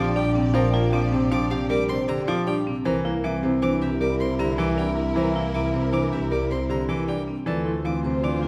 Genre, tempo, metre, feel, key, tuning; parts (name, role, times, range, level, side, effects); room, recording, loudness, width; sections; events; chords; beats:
classical, minimalist pattern music; 156 BPM; 6/4; straight; A4 = 440 Hz
buzzing marimba with medium mallets; melody; 0.0-8.5 s; G4 to F5; -34 LUFS; equal
wooden-headed alto flute; second line; 0.0-8.5 s; D4 to F4; -33 LUFS; equal
clear baby grand piano; accompaniment; 0.0-8.5 s; C3 to Bb3; -28 LUFS; equal
rich studio string section; sustained chords; 0.0-8.5 s; E4 to D5; -37 LUFS; equal
rich violin; arpeggios; 0.0-8.4 s; E5 to D6; -38 LUFS; equal
vibraphone with hard mallets; arpeggios; 0.0-8.5 s; C4 to C5; -32 LUFS; equal
rich studio double bass section; bass; 0.0-8.5 s; Bb1 to D2; -30 LUFS; equal
moderate scoring stage reverb, RT60 1.5 s; -24 LUFS; mono
0.0-8.5 A section
0.0 Bb6; 2.9 C7; 7.5 Dm7
0.16 | 0.54 0.93 1.31 1.70 2.08 2.47 | 2.85 3.24 3.62 4.01 4.39 4.78 | 5.16 5.54 5.93 6.31 6.70 7.08 | 7.47 7.85 8.24